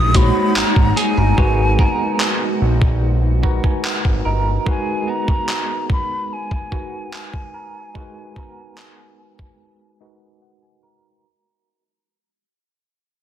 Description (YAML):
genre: contemporary R&B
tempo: 73 BPM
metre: 4/4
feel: straight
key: G# minor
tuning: A4 = 444 Hz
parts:
  - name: breathy mellow silver concert flute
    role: melody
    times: 0.0-10.4 s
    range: G#5 to D#6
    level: -24 LUFS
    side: left 1 dB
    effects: low-pass filter, tape echo
  - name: mellow tine electric piano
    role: accompaniment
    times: 0.0-11.3 s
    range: G#3 to A#5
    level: -25 LUFS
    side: equal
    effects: medium stereo tremolo, low-pass filter
  - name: granular cloud pad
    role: sustained chords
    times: 0.0-4.6 s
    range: G#3 to F#4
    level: -26 LUFS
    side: right 1 dB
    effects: built-in reverb, low-pass filter
  - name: clean electric guitar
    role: arpeggios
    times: 0.0-11.8 s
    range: G#3 to A#4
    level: -28 LUFS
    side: right 4 dB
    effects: tremolo, low-pass filter
  - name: fat analog bass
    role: bass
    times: 0.0-4.6 s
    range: G1 to A#1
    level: -17 LUFS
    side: equal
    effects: none
  - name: downlifter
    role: sound effects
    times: 0.0-4.7 s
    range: none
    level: -33 LUFS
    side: left 1 dB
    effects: none
  - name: dusty soul sampler-style drum kit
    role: drums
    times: 0.1-9.6 s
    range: handclaps, hi-hat, kick drum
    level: -19 LUFS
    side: equal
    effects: none
room: little or no reverb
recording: dense, heavily limited modern master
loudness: -15 LUFS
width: side -10 dB against mid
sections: 0.0-11.2 A section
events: fade-out 0.0-11.2; filter sweep 0.0-11.2; tine electric piano fill 3.0-4.7, 9.6-11.2; break 9.6-11.2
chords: 0.0 G#m9